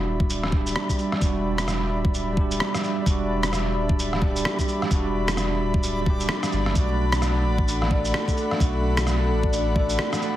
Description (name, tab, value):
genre	future garage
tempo	130 BPM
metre	4/4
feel	swing 60% on 16ths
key	E minor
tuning	A4 = 441 Hz
part	bell-like tine electric piano	accompaniment	0.0-10.4 s	G3 to A4	-28 LUFS	right 2 dB	medium stereo tremolo, sidechain pumping, tape echo
part	airy breathy pad	sustained chords	0.0-10.4 s	G3 to B5	-30 LUFS	left 1 dB	chorus, sidechain pumping
part	warm sub bass	bass	0.0-10.0 s	D1 to B1	-26 LUFS	equal	none
part	backwards swelling texture	texture	1.5-10.4 s	D4 to D5	-37 LUFS	equal	built-in reverb
part	electronic kick drum	drums	0.2-9.9 s	none	-24 LUFS	equal	overdrive
part	electronic shaker and rim click	drums	0.3-10.3 s	none	-27 LUFS	equal	none
part	vibraphone with medium mallets	melody	7.9-10.1 s	A4 to D5	-30 LUFS	left 2 dB	tape echo
room	light reverb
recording	heavily compressed radio sound, multiband compression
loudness	-21 LUFS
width	side -13 dB against mid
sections	0.0-10.4 A section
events	none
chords	0.0 Em7; 6.8 Bm7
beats	0.29 0.75 | 1.22 1.68 2.14 2.60 | 3.06 3.52 3.98 4.45 | 4.91 5.37 5.83 6.29 | 6.75 7.22 7.68 8.14 | 8.60 9.06 9.52 9.98